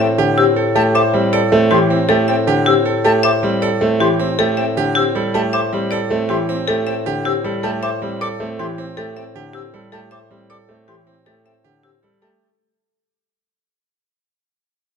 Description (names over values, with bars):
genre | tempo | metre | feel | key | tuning
classical, minimalist pattern music | 157 BPM | 6/4 | straight | A minor | A4 = 442 Hz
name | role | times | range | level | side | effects
marimba with hard mallets | melody | 0.0-12.5 s | G4 to E5 | -21 LUFS | left 7 dB | none
warm concert grand piano | accompaniment | 0.0-12.5 s | D3 to A3 | -20 LUFS | right 2 dB | none
bright grand piano | arpeggios | 0.0-12.5 s | C4 to C5 | -22 LUFS | right 6 dB | none
silver concert flute | arpeggios | 0.0-12.3 s | G5 to E6 | -24 LUFS | left 2 dB | none
clear bass clarinet | bass | 0.0-12.3 s | A2 | -22 LUFS | left 2 dB | none
room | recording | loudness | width
moderate recital hall reverb, RT60 1.6 s | none | -14 LUFS | side -6 dB against mid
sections
0.0-12.4 A section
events
fade-out 1.4-12.4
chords
0.0 Am7